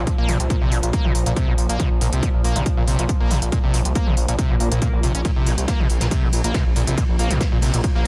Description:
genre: driving peak-time techno.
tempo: 139 BPM.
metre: 4/4.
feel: straight.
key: unclear.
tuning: A4 = 440 Hz.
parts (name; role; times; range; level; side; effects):
screaming distorted acid line; riff; 0.0-8.1 s; Bb2 to Db4; -28 LUFS; equal; distortion, analog chorus, sidechain pumping, delay.
gritty driven synth bass; bass; 0.0-8.0 s; Bb1 to C2; -24 LUFS; equal; tube saturation, sidechain pumping.
deep dark ambient pad; drone; 0.0-8.1 s; Bb2 to F3; -31 LUFS; equal; chorus, built-in reverb, sidechain pumping.
electronic hi-hat; drums; 0.1-7.9 s; none; -31 LUFS; equal; overdrive.
electronic kick drum; drums; 0.1-7.9 s; none; -23 LUFS; equal; overdrive.
swell; sound effects; 4.5-5.2 s; none; -34 LUFS; equal; none.
soft brush drum kit; drums; 5.3-8.1 s; hi-hat, ride cymbal, snare drum; -36 LUFS; equal; sidechain pumping on cymbals, high-pass filter on cymbals, sidechain pumping on hats, high-pass filter on hats, high-pass filter on snare, high-pass filter on room.
room: studio ambience.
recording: lossy compression artefacts.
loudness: -20 LUFS.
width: mono.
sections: 0.0-8.1 A section.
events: swell 4.5-5.2.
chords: 0.0 Bb5.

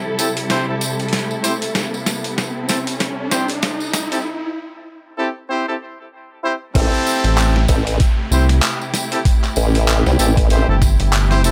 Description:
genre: glitch hop.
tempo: 96 BPM.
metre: 4/4.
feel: swing 58% on 16ths.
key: A minor pentatonic.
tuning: A4 = 440 Hz.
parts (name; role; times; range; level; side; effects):
clear studio string section; sustained chords; 0.0-11.5 s; C3 to A4; -28 LUFS; equal; sidechain pumping, low-pass filter.
riser and downlifter; sound effects; 0.0-11.5 s; none; -31 LUFS; equal; none.
brilliant horn section; stabs; 0.2-11.5 s; C4 to C5; -24 LUFS; equal; sidechain pumping, low-pass filter, dub echo.
boom bap sampler-style drum kit; drums; 0.2-11.5 s; handclaps, hi-hat, snare drum; -24 LUFS; equal; none.
tambourine; percussion; 0.2-11.5 s; none; -30 LUFS; equal; none.
formant-sweep wobble bass; bass; 6.8-10.7 s; A1 to C2; -18 LUFS; equal; chorus.
electronic kick drum; drums; 6.8-11.0 s; none; -18 LUFS; equal; none.
rubbery square bass; bass; 7.2-11.5 s; G1 to C2; -17 LUFS; equal; none.
room: light reverb.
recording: high-pass filter.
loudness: -18 LUFS.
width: mono.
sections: 0.0-6.8 A section; 6.8-11.5 B section.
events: build-up 0.0-6.8; drum fill 0.0-4.3; riser 0.0-4.3; filter sweep 0.0-6.8; break 4.3-6.8; drop 6.8-11.5.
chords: 0.0 Am7.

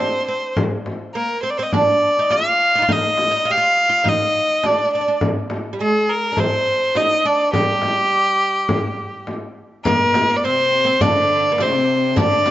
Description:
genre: Arabic maqam ensemble.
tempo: 104 BPM.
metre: 4/4.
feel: straight.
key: G maqam bayati.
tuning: A4 = 440 Hz.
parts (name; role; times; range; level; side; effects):
rich violin; melody; 0.0-12.5 s; G4 to F5; -17 LUFS; equal; none.
oud; second line; 0.0-12.5 s; G3 to G4; -24 LUFS; right 4 dB; none.
frame drum; percussion; 0.0-12.5 s; none; -23 LUFS; left 1 dB; none.
riq; percussion; 9.8-12.5 s; none; -31 LUFS; left 4 dB; none.
rich studio cello section; second line; 9.9-12.5 s; Bb2+50c to D3; -23 LUFS; left 2 dB; tape echo.
darbuka; percussion; 9.9-12.5 s; none; -28 LUFS; left 1 dB; none.
room: moderate spring reverb, RT60 2.6 s.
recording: nothing above 7.7 kHz.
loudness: -15 LUFS.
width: side -14 dB against mid.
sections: 0.0-9.8 A section; 9.8-12.5 B section.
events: none.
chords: none.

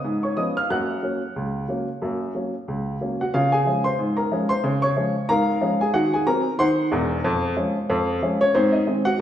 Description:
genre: ragtime piano.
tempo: 92 BPM.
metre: 2/4.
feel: swing 56% on 16ths.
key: F# major, Db major from 3.3 s.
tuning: A4 = 441 Hz.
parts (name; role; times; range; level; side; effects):
warm upright piano; solo; 0.0-9.2 s; Fb1 to F#6; -20 LUFS; equal; none.
room: wet recital hall reverb, RT60 1.5 s.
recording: recorded in a church or concert hall, nothing above 10.7 kHz.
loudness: -20 LUFS.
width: side -10 dB against mid.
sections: 0.0-3.3 A section; 3.3-9.2 B section.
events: none.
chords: 0.0 C#7; 0.7 F#; 3.3 Db; 5.9 Cdim/Eb; 7.2 Db/F; 8.5 Ab.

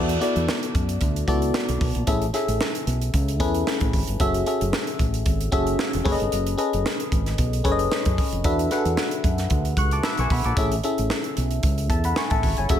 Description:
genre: polished 1980s jazz-funk pop.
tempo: 113 BPM.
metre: 4/4.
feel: swing 54% on 16ths.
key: A major.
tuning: A4 = 437 Hz.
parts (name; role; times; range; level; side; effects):
FM electric piano; accompaniment; 0.0-12.8 s; B3 to F#6; -24 LUFS; left 2 dB; lush chorus.
fingered electric bass; bass; 0.0-12.8 s; E1 to F#2; -25 LUFS; equal; none.
crisp fusion drum kit; drums; 0.1-12.8 s; hi-hat, kick drum, snare drum; -25 LUFS; right 1 dB; gated reverb.
room: studio ambience.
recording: none.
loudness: -20 LUFS.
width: side -10 dB against mid.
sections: 0.0-12.8 A section.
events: none.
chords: 0.0 E9sus4; 2.1 Amaj7; 4.2 F#m9; 6.1 B13/F#; 8.4 E9sus4; 10.6 Amaj7.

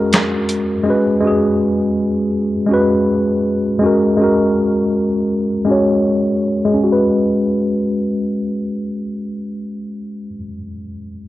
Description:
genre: lo-fi hip hop.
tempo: 81 BPM.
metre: 4/4.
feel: swing 57% on 16ths.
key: unclear.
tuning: A4 = 440 Hz.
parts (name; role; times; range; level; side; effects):
mellow tine electric piano; accompaniment; 0.0-11.3 s; G#3 to C#5; -15 LUFS; equal; medium stereo tremolo, cassette tape, low-pass filter.
dusty soul sampler-style drum kit; drums; 0.1-0.7 s; handclaps, hi-hat, snare drum; -17 LUFS; equal; overdrive.
room: light reverb.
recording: cassette tape.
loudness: -14 LUFS.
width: side -15 dB against mid.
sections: 0.0-6.8 A section; 6.8-9.7 B section.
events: filter sweep on tine electric piano 0.0-6.8.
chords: 0.0 F#add9; 0.9 C#5; 3.8 F#add9; 6.8 C#5.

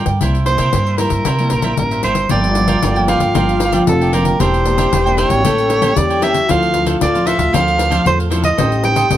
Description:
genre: samba and choro.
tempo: 115 BPM.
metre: 4/4.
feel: straight.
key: unclear.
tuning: A4 = 442 Hz.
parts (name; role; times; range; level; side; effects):
cavaquinho; accompaniment; 0.0-9.2 s; D4 to G5; -22 LUFS; right 3 dB; none.
nylon-string guitar; accompaniment; 0.0-9.2 s; G2 to Bb4; -21 LUFS; left 1 dB; none.
upright bass; bass; 0.1-9.2 s; E1 to C3; -18 LUFS; equal; none.
pandeiro; percussion; 0.1-9.2 s; none; -21 LUFS; left 5 dB; none.
breathy soprano saxophone; melody; 0.5-9.2 s; A4 to G5; -18 LUFS; right 2 dB; none.
breathy trombone; second line; 2.3-9.2 s; F4 to A4; -20 LUFS; left 3 dB; none.
room: moderate studio ambience, RT60 0.4 s.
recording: none.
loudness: -12 LUFS.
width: side -12 dB against mid.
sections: 0.0-2.3 A section; 2.3-9.2 B section.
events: none.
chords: 0.2 C7; 2.3 Gm7; 4.4 Em7b5; 5.4 A7b9; 6.5 Dm9; 8.6 Am7b5.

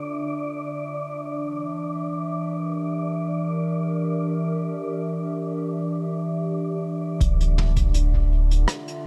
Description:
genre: ambient dub.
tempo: free time.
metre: none.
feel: none.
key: unclear.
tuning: A4 = 440 Hz.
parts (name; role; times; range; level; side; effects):
warbly tape-like pad; sustained chords; 0.0-9.1 s; D3 to E5; -29 LUFS; equal; chorus, built-in reverb.
wind-like tuned noise texture; texture; 0.0-7.2 s; D5; -37 LUFS; equal; built-in reverb.
soft dub sub bass; bass; 7.2-8.7 s; D1; -22 LUFS; equal; none.
electronic kick drum; drums; 7.2-8.3 s; none; -27 LUFS; equal; none.
vintage brush drum kit; drums; 7.2-9.0 s; hi-hat, rim click, toms; -32 LUFS; equal; low-pass filter on hats, low-pass filter on toms, low-pass filter on snare, low-pass filter on room.
room: moderate huge ambient reverb, RT60 4.1 s.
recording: none.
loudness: -25 LUFS.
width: mono.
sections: 0.0-7.2 A section; 7.2-9.1 B section.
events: none.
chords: 0.0 Dmadd9; 1.3 Em7b5; 7.2 Dmadd9.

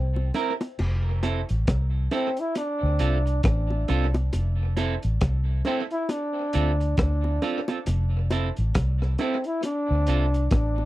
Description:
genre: roots reggae.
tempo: 68 BPM.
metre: 4/4.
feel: swing 59% on 16ths.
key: F major.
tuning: A4 = 440 Hz.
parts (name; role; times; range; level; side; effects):
warm trombone; melody; 0.0-10.9 s; C4 to E4; -29 LUFS; equal; tape echo.
vintage muted fingered electric bass; bass; 0.0-10.9 s; F1 to D2; -23 LUFS; equal; none.
bongos; percussion; 0.2-10.9 s; none; -31 LUFS; left 1 dB; none.
clean electric guitar; accompaniment; 0.3-10.4 s; C4 to Bb4; -31 LUFS; right 6 dB; tape echo.
crunchy breakbeat drum kit; drums; 0.3-10.8 s; crash cymbal, hi-hat, kick drum, rim click; -27 LUFS; equal; tape echo.
room: little or no reverb.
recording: dry, close 1970s-style studio recording.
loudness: -22 LUFS.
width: side -16 dB against mid.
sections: 0.8-10.9 A section.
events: none.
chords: 0.0 C7; 0.8 Fmaj7; 2.6 Dm7; 4.3 Fmaj7; 6.1 Dm7; 7.9 Fmaj7; 9.6 Dm7.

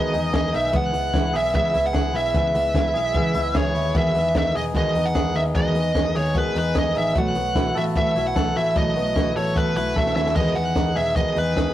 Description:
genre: jangly indie pop.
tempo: 150 BPM.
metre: 4/4.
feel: straight.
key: E major.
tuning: A4 = 440 Hz.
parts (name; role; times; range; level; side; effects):
bluesy overdriven lead guitar; melody; 0.0-11.7 s; B4 to F#5; -23 LUFS; right 1 dB; distortion.
fingerpicked steel-string acoustic guitar; accompaniment; 0.0-11.7 s; E2 to G#4; -27 LUFS; right 2 dB; none.
direct-recorded clean electric guitar; arpeggios; 0.0-11.7 s; F#3 to A4; -28 LUFS; left 2 dB; none.
vintage muted picked electric bass; bass; 0.1-11.7 s; E1 to E2; -27 LUFS; left 1 dB; none.
compact cocktail drum kit; drums; 0.1-11.7 s; crash cymbal, hi-hat, kick drum, ride cymbal, snare drum; -25 LUFS; equal; none.
room: moderate studio reverb, RT60 0.6 s.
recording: rough rehearsal-room recording.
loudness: -19 LUFS.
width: side -13 dB against mid.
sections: 0.0-11.7 A section.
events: drum fill 10.0-10.4.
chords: 0.0 Emaj7; 0.7 C#m7; 3.9 Emaj7; 7.2 B7sus4; 10.4 Emaj7.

